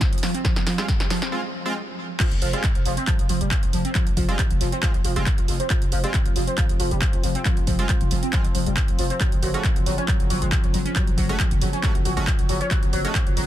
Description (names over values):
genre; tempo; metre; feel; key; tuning
driving peak-time techno; 137 BPM; 4/4; straight; F minor; A4 = 444 Hz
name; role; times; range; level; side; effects
analog drone; drone; 0.0-13.5 s; F3 to C4; -34 LUFS; equal; chorus, sidechain pumping
electronic kick drum; drums; 0.0-13.2 s; none; -22 LUFS; equal; none
techno drum kit; drums; 0.0-13.5 s; crash cymbal, handclaps, hi-hat, snare drum; -28 LUFS; right 1 dB; high-pass filter on snare, high-pass filter on hats, high-pass filter on cymbals, high-pass filter on room
overdriven synth lead; riff; 0.2-13.4 s; F3 to Db4; -28 LUFS; equal; phaser, ensemble chorus, cassette tape, sidechain pumping, digital delay
sync-sweep polysynth; stabs; 0.8-13.2 s; Ab3 to Gb4; -32 LUFS; right 2 dB; chorus, sidechain pumping, digital delay
growling 808-style bass; bass; 2.3-13.5 s; F1 to Gb1; -26 LUFS; equal; overdrive, sidechain pumping, low-pass filter
room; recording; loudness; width
little or no reverb; dense, heavily limited modern master; -20 LUFS; side -12 dB against mid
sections
0.0-2.2 A section; 2.2-13.5 B section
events
build-up 0.0-2.2; drum fill 0.0-1.3; break 1.3-2.2; drop 2.2-13.5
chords
0.0 Fm; 9.2 Gbm